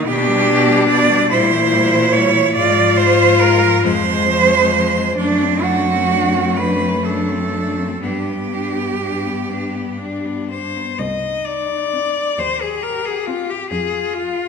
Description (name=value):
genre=classical, lyrical piece for cello ensemble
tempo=39-49 BPM (dotted quarters)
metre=6/8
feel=rubato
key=unclear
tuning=A4 = 440 Hz
part: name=clear cello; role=melody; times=0.0-14.5 s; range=Ab3 to Eb5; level=-19 LUFS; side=left 7 dB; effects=none
part: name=rich cello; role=second line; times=0.0-14.5 s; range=D4 to D5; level=-18 LUFS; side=right 6 dB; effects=none
part: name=clear cello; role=accompaniment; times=0.0-13.6 s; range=E3 to D4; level=-25 LUFS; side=left 3 dB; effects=none
part: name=warm cello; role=bass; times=0.0-14.5 s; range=C2 to B2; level=-22 LUFS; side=right 1 dB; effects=none
room=wet recital hall reverb, RT60 1.4 s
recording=minimal, uncompressed stereo recording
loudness=-14 LUFS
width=side -6 dB against mid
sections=0.0-11.0 A section; 11.0-14.5 B section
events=none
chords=0.1 G/B; 1.3 C7/Bb; 2.6 Fm/Ab; 3.8 Fm; 5.2 D7/F#; 8.0 G; 11.0 Cm; 12.4 Cm/Eb; 13.7 Fm